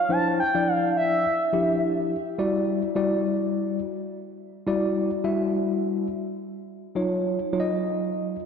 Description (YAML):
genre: funk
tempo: 105 BPM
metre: 4/4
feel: swing 56% on 16ths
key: unclear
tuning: A4 = 440 Hz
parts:
  - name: expressive synth lead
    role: melody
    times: 0.0-2.1 s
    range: E5 to A5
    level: -24 LUFS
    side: equal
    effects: chorus, tape echo
  - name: mellow tine electric piano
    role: accompaniment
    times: 0.1-8.4 s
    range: F3 to E5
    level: -24 LUFS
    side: left 1 dB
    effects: medium stereo tremolo
room: wet lush hall reverb, RT60 2.5 s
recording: dreamy mix soaked in reverb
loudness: -22 LUFS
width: side -6 dB against mid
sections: 0.0-2.4 A section; 2.4-8.5 B section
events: none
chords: 0.1 Dm9; 2.4 Em9; 7.0 D#m9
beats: | 0.10 0.67 1.24 1.82 | 2.39 2.96 3.53 4.10 | 4.67 5.24 5.82 6.39 | 6.96 7.53 8.10